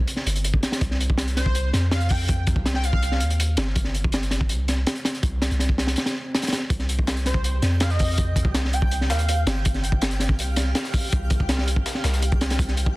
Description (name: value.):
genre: drum and bass, jungle.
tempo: 163 BPM.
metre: 4/4.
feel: straight.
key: C minor.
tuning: A4 = 440 Hz.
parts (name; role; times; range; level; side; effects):
long sustained 808-style bass; bass; 0.0-13.0 s; G1 to F2; -23 LUFS; equal; none.
crunchy breakbeat drum kit; drums; 0.1-13.0 s; hi-hat, kick drum, snare drum; -23 LUFS; equal; none.
airy dreamy lead; melody; 1.4-3.1, 7.3-9.4 s; C5 to G5; -30 LUFS; equal; chorus, dub echo.
dusty soul sampler-style drum kit; drums; 6.7-12.9 s; hi-hat, snare drum; -33 LUFS; left 2 dB; overdrive, high-pass filter on hats, high-pass filter on snare.
twinkling granular texture; texture; 7.0-13.0 s; G4 to G5; -35 LUFS; equal; built-in reverb.
room: studio ambience.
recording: dense, heavily limited modern master, vinyl crackle.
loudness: -20 LUFS.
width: side -20 dB against mid.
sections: 0.0-13.0 A section.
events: none.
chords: 0.0 C5.